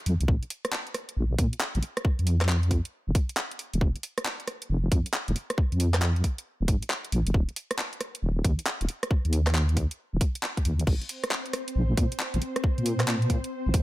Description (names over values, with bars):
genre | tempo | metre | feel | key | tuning
UK garage, two-step garage | 136 BPM | 4/4 | swing 65% on 16ths | unclear | A4 = 438 Hz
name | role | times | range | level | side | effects
deep soft wobble bass | bass | 0.1-13.8 s | Eb1 to Bb2 | -24 LUFS | equal | chorus
garage drum kit | drums | 0.1-13.8 s | crash cymbal, handclaps, hi-hat, rim click | -31 LUFS | equal | overdrive
electronic kick drum | drums | 0.3-13.8 s | none | -24 LUFS | equal | overdrive
ethereal airy pad | sustained chords | 10.9-13.8 s | C4 to C5 | -35 LUFS | equal | ensemble chorus, built-in reverb, sidechain pumping
room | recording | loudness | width
little or no reverb | none | -25 LUFS | side -17 dB against mid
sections
0.0-13.8 A section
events
none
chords
0.0 N.C.; 10.9 Bbsus2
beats
| 0.28 0.72 1.17 1.61 | 2.05 2.49 2.93 3.37 | 3.81 4.25 4.70 5.14 | 5.58 6.02 6.46 6.90 | 7.34 7.78 8.22 8.66 | 9.11 9.55 9.99 10.43 | 10.87 11.31 11.75 12.20 | 12.64 13.08 13.52